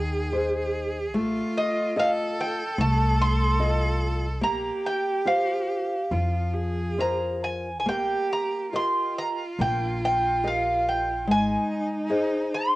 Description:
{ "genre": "fado-style ballad", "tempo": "71 BPM", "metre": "4/4", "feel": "uneven beats, rubato", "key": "Eb major", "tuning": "A4 = 440 Hz", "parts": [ { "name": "clear cello", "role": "second line", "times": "0.0-12.8 s", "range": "Eb4 to A4", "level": "-30 LUFS", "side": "right 2 dB", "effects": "cassette tape" }, { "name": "nylon-string guitar", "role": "accompaniment", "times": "0.0-12.8 s", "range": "Eb3 to Eb5", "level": "-29 LUFS", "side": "left 2 dB", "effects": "cassette tape" }, { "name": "upright bass", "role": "bass", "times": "0.0-11.5 s", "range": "Ab1 to F2", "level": "-28 LUFS", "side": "equal", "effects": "none" }, { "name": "Greek bouzouki", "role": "melody", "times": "1.6-12.8 s", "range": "Eb5 to C6", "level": "-26 LUFS", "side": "right 1 dB", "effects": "cassette tape" } ], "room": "light reverb, small room ambience", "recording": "home recording on cassette", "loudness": "-23 LUFS", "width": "side -18 dB against mid", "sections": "0.0-12.8 A section", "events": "none", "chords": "0.0 Ab; 1.1 F7/A; 4.4 Bbsus2; 7.9 Eb/Bb; 11.3 Ab" }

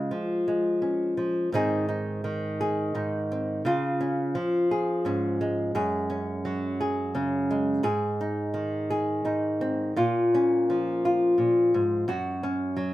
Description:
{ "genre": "folk, solo fingerstyle acoustic guitar", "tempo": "85 BPM", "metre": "3/4", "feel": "straight", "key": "unclear", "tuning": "A4 = 441 Hz", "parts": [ { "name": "nylon-string guitar", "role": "solo", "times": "0.0-12.9 s", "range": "Gb2 to Ab4", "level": "-24 LUFS", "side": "equal", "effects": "none" } ], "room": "moderate studio reverb, RT60 0.8 s", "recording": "band playing live in one room", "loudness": "-24 LUFS", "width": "side -15 dB against mid", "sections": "0.0-1.5 A section; 1.5-12.9 B section", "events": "none", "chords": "0.0 Db; 1.5 Ab; 3.6 Db; 5.7 Gbsus2; 7.8 Ab; 10.0 Bbm; 12.1 Gb5" }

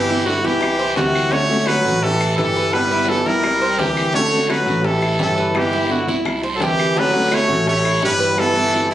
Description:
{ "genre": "latin, Cuban son and guajira", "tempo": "170 BPM", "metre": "4/4", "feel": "straight", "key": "D major", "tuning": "A4 = 439 Hz", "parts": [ { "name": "brilliant trumpet", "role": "melody", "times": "0.0-8.9 s", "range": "F#4 to C#5", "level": "-19 LUFS", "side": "equal", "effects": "none" }, { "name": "growling trombone", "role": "second line", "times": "0.0-8.9 s", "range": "C3 to A3", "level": "-23 LUFS", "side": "right 2 dB", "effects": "slapback echo" }, { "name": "picked plugged-in steel-string acoustic guitar", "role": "accompaniment", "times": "0.0-8.9 s", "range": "D3 to F#4", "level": "-23 LUFS", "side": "left 2 dB", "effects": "none" }, { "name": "Cuban tres", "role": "arpeggios", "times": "0.0-8.9 s", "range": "G3 to C5", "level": "-24 LUFS", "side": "right 1 dB", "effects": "none" }, { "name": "upright bass", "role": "bass", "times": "0.0-8.9 s", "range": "G1 to D2", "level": "-26 LUFS", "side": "equal", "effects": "none" }, { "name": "bongos", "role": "percussion", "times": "0.3-8.9 s", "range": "none", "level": "-28 LUFS", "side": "left 4 dB", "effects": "none" }, { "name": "guiro", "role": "percussion", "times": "0.3-8.9 s", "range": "none", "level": "-30 LUFS", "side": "right 4 dB", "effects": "none" }, { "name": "claves", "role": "percussion", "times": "0.6-8.6 s", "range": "none", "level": "-29 LUFS", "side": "left 2 dB", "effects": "none" } ], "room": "light reverb", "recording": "recorded on a phone in the room, club reverb, compression, nothing above 10.6 kHz", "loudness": "-15 LUFS", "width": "side -12 dB against mid", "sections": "0.0-8.9 A section", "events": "none", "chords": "0.0 G6; 0.6 C7; 1.3 Dmaj7; 2.0 A7; 2.7 G6; 3.4 C7; 4.1 Dmaj7; 4.9 A7; 5.6 G6; 6.3 C7; 7.0 Dmaj7; 7.7 A7; 8.4 G69" }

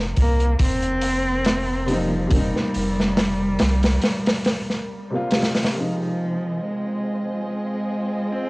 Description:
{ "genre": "trip hop", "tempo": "70 BPM", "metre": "4/4", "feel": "swing 55% on 16ths", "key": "F minor", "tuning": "A4 = 440 Hz", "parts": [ { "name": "dark upright piano", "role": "accompaniment", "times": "0.0-8.5 s", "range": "C3 to F4", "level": "-28 LUFS", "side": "equal", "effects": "harmonic tremolo, low-pass filter, cassette tape, tape echo" }, { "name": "warm sub bass", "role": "bass", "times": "0.0-4.0 s", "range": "F1 to C2", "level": "-23 LUFS", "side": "equal", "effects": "tube saturation" }, { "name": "flickering grainy texture", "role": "texture", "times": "0.0-8.5 s", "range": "Bb3 to C5", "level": "-37 LUFS", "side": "equal", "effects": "none" }, { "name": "warm cello", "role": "melody", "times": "0.2-8.5 s", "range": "F3 to C4", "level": "-24 LUFS", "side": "equal", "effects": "cassette tape" }, { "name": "crunchy breakbeat drum kit", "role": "drums", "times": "0.2-5.7 s", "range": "hi-hat, kick drum, snare drum", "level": "-22 LUFS", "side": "equal", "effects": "cassette tape" }, { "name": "dark studio violin section", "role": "sustained chords", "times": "5.7-8.5 s", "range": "C4 to Eb5", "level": "-31 LUFS", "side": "right 1 dB", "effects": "cassette tape" } ], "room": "studio ambience", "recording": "home recording on cassette", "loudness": "-19 LUFS", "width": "side -24 dB against mid", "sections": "0.0-5.7 A section; 5.7-8.5 B section", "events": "none", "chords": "0.0 Cm7/F; 5.7 Fm7" }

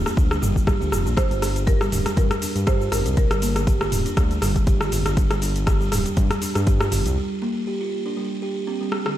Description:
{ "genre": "afro house", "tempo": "120 BPM", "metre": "4/4", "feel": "swing 55% on 16ths", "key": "G minor", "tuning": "A4 = 441 Hz", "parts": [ { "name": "smooth gliding synth bass", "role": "bass", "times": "0.0-7.2 s", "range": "D1 to G2", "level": "-24 LUFS", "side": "equal", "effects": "sidechain pumping" }, { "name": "buzzing kalimba", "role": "arpeggios", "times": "0.1-9.2 s", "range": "D3 to G4", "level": "-27 LUFS", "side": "right 1 dB", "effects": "sidechain pumping, ping-pong delay" }, { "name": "deep house drum kit", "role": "drums", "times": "0.1-9.1 s", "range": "hi-hat, rim click, shaker, toms", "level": "-25 LUFS", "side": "equal", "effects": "overdrive" }, { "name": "electronic kick drum", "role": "drums", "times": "0.2-6.8 s", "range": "none", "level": "-20 LUFS", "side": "equal", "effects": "overdrive" }, { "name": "buzzing marimba with medium mallets", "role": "melody", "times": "1.2-4.6 s", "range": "Bb4 to C5", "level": "-30 LUFS", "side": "left 1 dB", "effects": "ping-pong delay" } ], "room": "light reverb", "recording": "none", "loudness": "-19 LUFS", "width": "side -12 dB against mid", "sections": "0.0-9.2 A section", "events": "break 7.2-9.2; drum fill 8.9", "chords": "0.0 Gm" }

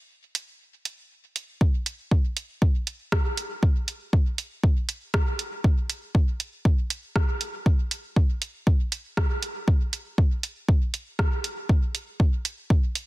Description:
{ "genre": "techno", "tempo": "119 BPM", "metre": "4/4", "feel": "straight", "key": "none", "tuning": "none", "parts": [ { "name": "soft vintage rhythm box", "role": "drums", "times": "0.3-13.1 s", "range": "hi-hat, rim click", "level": "-30 LUFS", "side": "right 2 dB", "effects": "none" }, { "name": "electronic kick drum", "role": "drums", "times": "1.6-12.8 s", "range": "none", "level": "-21 LUFS", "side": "equal", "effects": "none" } ], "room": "digital ambience", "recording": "dense, heavily limited modern master", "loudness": "-23 LUFS", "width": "side -19 dB against mid", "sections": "0.0-13.1 A section", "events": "break 0.0-1.6", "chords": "none" }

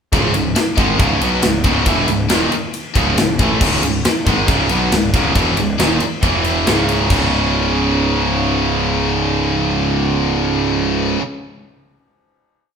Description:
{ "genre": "heavy metal", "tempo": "138 BPM", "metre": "4/4", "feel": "straight", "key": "C# minor", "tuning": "A4 = 440 Hz", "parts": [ { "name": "heavy high-gain guitar", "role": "riff", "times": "0.1-11.2 s", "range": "C#2 to B3", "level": "-21 LUFS", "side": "left 8 dB", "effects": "distortion" }, { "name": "tight distorted guitar", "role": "riff", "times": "0.1-11.2 s", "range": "C#2 to B3", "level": "-20 LUFS", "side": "right 8 dB", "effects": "distortion" }, { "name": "tight distorted guitar", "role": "riff", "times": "0.1-11.2 s", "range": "C#2 to B3", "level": "-22 LUFS", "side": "left 1 dB", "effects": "distortion" }, { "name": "fuzz picked electric bass", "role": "bass", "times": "0.1-11.1 s", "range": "C#1 to B1", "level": "-21 LUFS", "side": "equal", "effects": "overdrive" }, { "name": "tight metal drum kit", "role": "drums", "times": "0.1-7.2 s", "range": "crash cymbal, kick drum, ride cymbal, snare drum", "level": "-18 LUFS", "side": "equal", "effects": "none" } ], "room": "moderate large studio reverb, RT60 1.4 s", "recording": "band playing live in one room", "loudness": "-14 LUFS", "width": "side -6 dB against mid", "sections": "0.1-7.1 riff; 7.1-10.6 final chord", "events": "none", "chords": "0.1 C#m; 6.2 E5; 6.7 C#5" }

